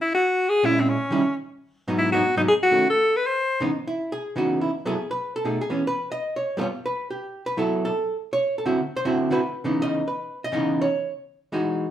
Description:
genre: jazz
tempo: 242 BPM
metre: 4/4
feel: swing 59% on 8ths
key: C# minor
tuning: A4 = 439 Hz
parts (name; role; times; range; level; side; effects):
- bright alto saxophone; melody; 0.0-3.6 s; B#3 to B#4; -20 LUFS; left 1 dB; none
- archtop guitar, miked and amplified; accompaniment; 0.6-11.9 s; G#2 to D#5; -23 LUFS; right 1 dB; none
room: wet studio reverb, RT60 0.7 s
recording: heard from further back in the room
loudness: -21 LUFS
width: side -11 dB against mid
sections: 0.0-3.7 A section; 3.7-11.6 B section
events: none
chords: 0.0 A#m7b5; 1.2 N.C.; 1.7 G#m7; 2.7 D#m7b5; 3.2 C#m9; 4.7 F#m11; 5.2 B6; 5.7 E6; 6.7 F#m7; 8.7 D9; 9.7 C#m9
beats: 0.23 0.48 | 0.73 0.98 1.23 1.47 | 1.72 1.97 2.22 2.47 | 2.71 2.96 3.21 3.46 | 3.71 3.96 4.20 4.45 | 4.70 4.95 5.19 5.44 | 5.69 5.94 6.19 6.43 | 6.68 6.93 7.18 7.42 | 7.67 7.92 8.17 8.42 | 8.66 8.91 9.16 9.41 | 9.65 9.90 10.15 10.40 | 10.64 10.89 11.14 11.39 | 11.63

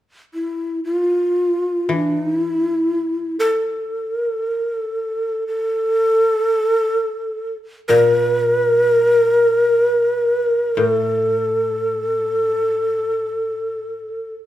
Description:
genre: japanese traditional, Japanese chamber music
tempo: free time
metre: none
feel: none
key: unclear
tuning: A4 = 444 Hz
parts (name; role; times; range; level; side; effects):
- breathy mellow shakuhachi; melody; 0.3-14.4 s; E4 to Bb4; -17 LUFS; equal; none
- koto; accompaniment; 1.9-14.2 s; A2 to E3; -25 LUFS; left 4 dB; none
room: moderate recital hall reverb, RT60 1.5 s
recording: minimal, uncompressed stereo recording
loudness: -16 LUFS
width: side -13 dB against mid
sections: 0.0-14.5 A section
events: none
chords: none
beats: free time

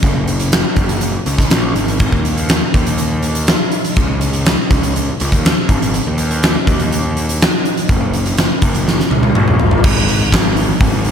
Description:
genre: quiet-loud alternative rock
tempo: 122 BPM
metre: 4/4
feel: straight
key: unclear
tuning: A4 = 439 Hz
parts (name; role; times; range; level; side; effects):
- fuzz picked electric bass; bass; 0.0-11.1 s; F#1 to D#2; -17 LUFS; equal; overdrive
- huge arena drum kit; drums; 0.0-11.1 s; crash cymbal, hi-hat, kick drum, snare drum, toms; -14 LUFS; equal; none
room: light reverb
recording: none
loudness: -12 LUFS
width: side -8 dB against mid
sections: 0.0-9.8 A section; 9.8-11.1 B section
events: drum fill 8.9-9.8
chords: none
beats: | 0.03 0.52 1.01 1.50 | 2.00 2.49 2.98 3.47 | 3.96 4.46 4.95 5.44 | 5.93 6.42 6.91 7.40 | 7.89 8.38 8.87 9.35 | 9.84 10.33 10.81

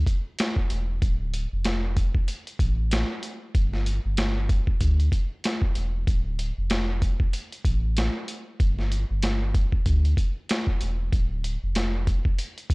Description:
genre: hip hop, boom-bap hip-hop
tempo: 95 BPM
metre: 4/4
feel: swing 57% on 16ths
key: unclear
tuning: A4 = 440 Hz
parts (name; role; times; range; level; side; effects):
- soft dub sub bass; bass; 0.0-12.7 s; D1 to D2; -25 LUFS; equal; tube saturation
- boom bap sampler-style drum kit; drums; 0.1-12.7 s; hi-hat, kick drum, snare drum; -24 LUFS; equal; none
room: little or no reverb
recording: dry, gritty hardware recording, cassette tape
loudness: -23 LUFS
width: side -28 dB against mid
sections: 0.0-12.7 A section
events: none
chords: none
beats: 0.39 | 1.02 1.65 2.28 2.92 | 3.55 4.18 4.81 5.44 | 6.07 6.71 7.34 7.97 | 8.60 9.23 9.86 10.49 | 11.13 11.76 12.39

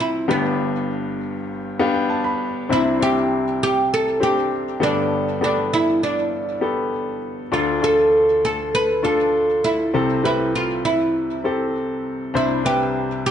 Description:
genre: pop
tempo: 100 BPM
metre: 4/4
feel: straight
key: C major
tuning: A4 = 440 Hz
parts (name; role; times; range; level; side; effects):
- oud; melody; 0.0-13.3 s; B3 to B4; -20 LUFS; right 2 dB; none
- clear baby grand piano; accompaniment; 0.0-13.3 s; G1 to B5; -22 LUFS; left 2 dB; none
room: moderate large studio reverb, RT60 1.2 s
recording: nothing above 11.0 kHz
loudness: -18 LUFS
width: side -9 dB against mid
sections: 0.0-2.7 A section; 2.7-13.3 B section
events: grand piano fill 1.5-2.7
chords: 0.3 G; 2.7 Cadd9; 4.8 Gadd9; 7.5 Dm; 9.9 Am7/C; 12.3 Cadd9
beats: | 0.29 0.89 1.50 2.10 | 2.70 3.31 3.91 4.51 | 5.12 5.72 6.32 6.92 | 7.53 8.13 8.73 9.33 | 9.94 10.54 11.14 11.74 | 12.35 12.95

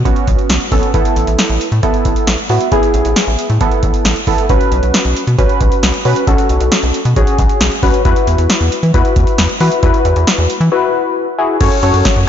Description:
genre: synth-pop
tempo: 135 BPM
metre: 4/4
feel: straight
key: unclear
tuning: A4 = 440 Hz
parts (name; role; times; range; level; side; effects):
- rubbery square bass; bass; 0.0-12.3 s; A1 to E3; -14 LUFS; equal; none
- warm analog keys; accompaniment; 0.1-12.2 s; B3 to C#5; -15 LUFS; left 1 dB; chorus
- electro analog drum machine; drums; 0.1-12.3 s; crash cymbal, hi-hat, kick drum, snare drum; -14 LUFS; equal; none
room: light reverb, digital ambience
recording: blown-out, overdriven recording, overdrive, nothing above 7.6 kHz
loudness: -11 LUFS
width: side -9 dB against mid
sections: 0.0-11.6 A section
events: break 10.7-11.6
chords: 0.0 Bsus2; 0.9 Asus2; 4.5 Bsus2; 8.1 Esus2; 11.6 F#m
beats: 0.05 0.50 | 0.94 1.39 1.83 2.27 | 2.72 3.16 3.61 4.05 | 4.50 4.94 5.38 5.83 | 6.27 6.72 7.16 7.61 | 8.05 8.50 8.94 9.38 | 9.83 10.27 10.72 11.16 | 11.61 12.05

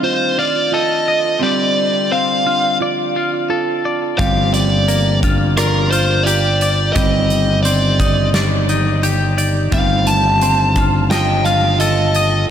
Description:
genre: post-rock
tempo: 87 BPM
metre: 4/4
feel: straight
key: unclear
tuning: A4 = 440 Hz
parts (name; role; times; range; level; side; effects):
- biting lead guitar; melody; 0.0-12.4 s; Bb4 to A5; -17 LUFS; equal; overdrive, analog delay
- pedal steel guitar; sustained chords; 0.0-12.5 s; D3 to G4; -28 LUFS; left 4 dB; none
- handpan; arpeggios; 0.0-12.5 s; C4 to F4; -23 LUFS; right 7 dB; analog delay
- twelve-string electric guitar; arpeggios; 0.0-12.5 s; G3 to Eb5; -21 LUFS; left 4 dB; analog delay
- growling fingered electric bass; bass; 4.2-12.4 s; G1; -17 LUFS; equal; overdrive
- huge arena drum kit; drums; 4.2-12.3 s; hi-hat, kick drum, rim click, snare drum; -21 LUFS; equal; none
room: light reverb, small room ambience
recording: none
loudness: -13 LUFS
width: side -9 dB against mid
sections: 0.0-12.5 A section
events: none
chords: 0.0 F7; 1.4 Dm7; 4.2 Gm7; 7.0 Cmadd9/G; 9.7 F7/G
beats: 0.04 0.73 | 1.43 2.12 2.81 3.50 | 4.19 4.88 5.57 6.26 | 6.96 7.65 8.34 9.03 | 9.72 10.41 11.10 11.79 | 12.48

